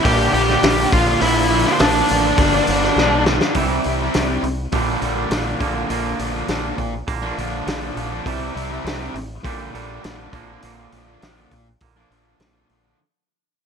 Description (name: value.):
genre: quiet-loud alternative rock.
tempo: 102 BPM.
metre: 4/4.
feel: straight.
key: unclear.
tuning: A4 = 437 Hz.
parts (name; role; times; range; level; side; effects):
octave-fuzz lead guitar; melody; 0.0-3.2 s; D4 to G5; -19 LUFS; equal; distortion, slapback echo.
fuzz guitar; riff; 0.0-13.0 s; G2 to E4; -21 LUFS; equal; distortion.
growling fingered electric bass; bass; 0.0-12.9 s; G1 to C2; -25 LUFS; equal; overdrive.
loose indie drum kit; drums; 0.0-12.8 s; hi-hat, kick drum, snare drum; -22 LUFS; equal; none.
twangy electric guitar; arpeggios; 3.6-13.0 s; Bb2 to Bb3; -30 LUFS; right 11 dB; slapback echo.
room: light reverb, small room reverb.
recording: none.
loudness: -16 LUFS.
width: side -6 dB against mid.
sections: 0.0-3.5 A section; 3.5-13.0 B section.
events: drum fill 3.0-3.5; fade-out 3.5-13.0.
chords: 0.1 Gm/Bb; 0.9 Bb; 2.4 Gm; 3.5 C; 4.7 Gm/Bb; 5.6 Bb; 8.3 C; 9.4 Gm/Bb; 10.3 Bb.